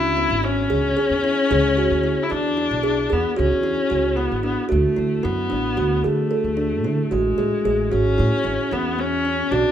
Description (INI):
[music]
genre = contemporary instrumental, chamber music in an uneven meter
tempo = 225 BPM (eighths)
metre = 9/8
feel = straight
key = unclear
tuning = A4 = 440 Hz
[part]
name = rich viola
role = second line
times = 0.0-9.7 s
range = G#3 to E4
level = -22 LUFS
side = left 4 dB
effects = none
[part]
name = kalimba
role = arpeggios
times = 0.0-9.7 s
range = B3 to A4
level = -22 LUFS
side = right 2 dB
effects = none
[part]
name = upright bass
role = bass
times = 0.0-9.6 s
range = G#1 to D3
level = -24 LUFS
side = equal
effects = none
[sound]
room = light reverb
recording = minimal, uncompressed stereo recording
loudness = -18 LUFS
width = side -10 dB against mid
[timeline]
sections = 0.0-4.7 A section; 4.7-9.7 B section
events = none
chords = 0.0 C#m; 2.3 E7; 3.4 C#m; 4.7 D; 7.1 Amaj7